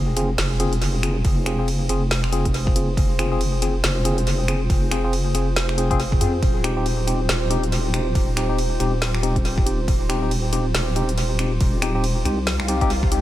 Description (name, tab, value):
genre	deep dubstep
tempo	139 BPM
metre	4/4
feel	swing 59% on 16ths, half-time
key	F minor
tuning	A4 = 439 Hz
part	dark analog pad	sustained chords	0.0-13.2 s	F4 to C5	-30 LUFS	equal	lush chorus
part	deep soft wobble bass	bass	0.0-13.2 s	Eb1 to F2	-22 LUFS	equal	chorus
part	sub drop and swell	sound effects	0.0-1.2, 12.6-13.2 s	none	-34 LUFS	left 1 dB	none
part	tine electric piano	stabs	0.2-13.2 s	C4 to Ab4	-26 LUFS	left 2 dB	medium stereo tremolo, dub echo
part	deep house drum kit	drums	0.2-13.2 s	finger snaps, hi-hat, ride cymbal, snare drum	-27 LUFS	equal	tape echo
part	electronic kick drum	drums	1.2-13.1 s	none	-20 LUFS	equal	none
room	digital ambience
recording	echo-heavy mix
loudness	-19 LUFS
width	side -14 dB against mid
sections	0.0-13.2 A section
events	impact 0.0-1.2; swell 12.6-13.2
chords	0.0 Fm; 6.4 Eb6